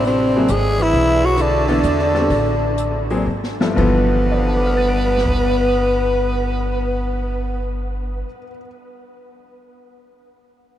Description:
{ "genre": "jazz, small-group swing and bop", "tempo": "115-135 BPM", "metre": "3/4", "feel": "swing 68% on 8ths", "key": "G mixolydian", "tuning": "A4 = 440 Hz", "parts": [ { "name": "growling tenor saxophone", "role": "melody", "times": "0.0-7.7 s", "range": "B3 to G#4", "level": "-19 LUFS", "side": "left 1 dB", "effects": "none" }, { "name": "breathy tenor saxophone", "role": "second line", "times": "0.0-7.7 s", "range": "C3 to B4", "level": "-24 LUFS", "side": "right 2 dB", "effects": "none" }, { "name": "clear upright piano", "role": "accompaniment", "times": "0.0-8.7 s", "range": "G2 to D7", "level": "-23 LUFS", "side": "left 2 dB", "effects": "none" }, { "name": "upright bass", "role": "bass", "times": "0.0-8.2 s", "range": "G1 to E2", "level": "-21 LUFS", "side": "equal", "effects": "none" }, { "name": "open jazz drum kit", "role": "drums", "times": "0.0-5.3 s", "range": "crash cymbal, hi-hat, kick drum, snare drum", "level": "-28 LUFS", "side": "equal", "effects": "none" } ], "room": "wet huge ambient reverb, RT60 8.4 s", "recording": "in a vast, echoing space", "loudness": "-15 LUFS", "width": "side -12 dB against mid", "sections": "0.0-3.8 A section; 3.8-6.9 B section", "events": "slowing down 0.9-3.8; drum fill 3.3-3.8", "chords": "0.5 E/G#; 0.9 Bm7; 1.8 E7sus4; 2.3 Am; 3.3 G13b9/Ab; 3.8 G13" }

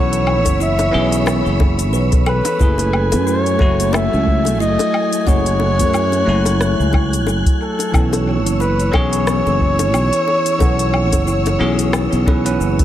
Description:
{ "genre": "sunset chillout", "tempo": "90 BPM", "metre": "4/4", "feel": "swing 57% on 16ths", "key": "unclear", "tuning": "A4 = 441 Hz", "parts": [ { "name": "trumpet with bucket mute", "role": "melody", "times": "0.0-12.6 s", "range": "A4 to E5", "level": "-20 LUFS", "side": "equal", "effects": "analog delay" }, { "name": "bell-like tine electric piano", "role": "accompaniment", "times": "0.0-12.8 s", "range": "E3 to G#5", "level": "-22 LUFS", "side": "moving between left 3 dB and right 4 dB", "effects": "auto-pan, analog delay" }, { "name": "soft string machine", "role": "sustained chords", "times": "0.0-12.8 s", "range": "A3 to F#6", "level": "-24 LUFS", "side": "equal", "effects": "ensemble chorus" }, { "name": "kalimba", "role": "arpeggios", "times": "0.0-12.6 s", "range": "E4 to F#5", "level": "-26 LUFS", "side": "right 1 dB", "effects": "analog delay" }, { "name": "sustaining fretless electric bass", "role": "bass", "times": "0.0-12.8 s", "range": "F#1 to F#2", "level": "-18 LUFS", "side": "equal", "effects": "tube saturation, analog chorus" }, { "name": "deep house drum kit", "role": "drums", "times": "0.1-12.8 s", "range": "cabasa, hi-hat, rim click, woodblock", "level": "-25 LUFS", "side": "left 2 dB", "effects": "tape echo" }, { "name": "electronic kick drum", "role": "drums", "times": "0.5-12.8 s", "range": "none", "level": "-16 LUFS", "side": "equal", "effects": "none" }, { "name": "bongos", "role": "percussion", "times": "0.5-12.8 s", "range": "none", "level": "-26 LUFS", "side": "left 5 dB", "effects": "none" } ], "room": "light reverb, digital ambience", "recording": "echo-heavy mix", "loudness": "-13 LUFS", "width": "side -12 dB against mid", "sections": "0.0-12.8 A section", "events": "none", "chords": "0.0 B9sus4; 2.6 F#m9; 7.9 B9sus4" }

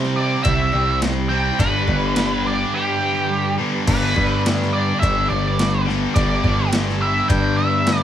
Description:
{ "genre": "classic rock", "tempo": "105 BPM", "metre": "4/4", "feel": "straight", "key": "G major", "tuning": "A4 = 440 Hz", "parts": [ { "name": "mellow tonewheel organ", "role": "sustained chords", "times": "0.0-8.0 s", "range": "B3 to C5", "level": "-34 LUFS", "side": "right 2 dB", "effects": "none" }, { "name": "cranked stack guitar", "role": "riff", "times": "0.0-8.0 s", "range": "G2 to C4", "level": "-26 LUFS", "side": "left 1 dB", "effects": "overdrive, phaser" }, { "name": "distorted electric guitar", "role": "riff", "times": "0.0-8.0 s", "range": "G2 to C4", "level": "-25 LUFS", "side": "left 6 dB", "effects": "overdrive" }, { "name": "sludgy distorted guitar", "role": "riff", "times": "0.0-8.0 s", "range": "G2 to G4", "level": "-28 LUFS", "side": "right 5 dB", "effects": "overdrive" }, { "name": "growling picked electric bass", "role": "bass", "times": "0.0-8.0 s", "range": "G1 to C3", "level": "-22 LUFS", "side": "equal", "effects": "overdrive" }, { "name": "boom bap sampler-style drum kit", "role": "drums", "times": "0.0-8.0 s", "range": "crash cymbal, kick drum, ride cymbal, snare drum", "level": "-23 LUFS", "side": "equal", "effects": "overdrive" }, { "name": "octave-fuzz lead guitar", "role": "melody", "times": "0.2-8.0 s", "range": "G4 to G5", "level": "-22 LUFS", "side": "right 2 dB", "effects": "wah, distortion" }, { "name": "cowbell", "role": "percussion", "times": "0.4-8.0 s", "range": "none", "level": "-34 LUFS", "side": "left 4 dB", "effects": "none" } ], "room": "moderate studio ambience, RT60 0.5 s", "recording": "band playing live in one room", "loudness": "-16 LUFS", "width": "side -10 dB against mid", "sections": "0.0-3.9 A section; 3.9-8.0 A section", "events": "none", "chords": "0.0 C; 1.6 G" }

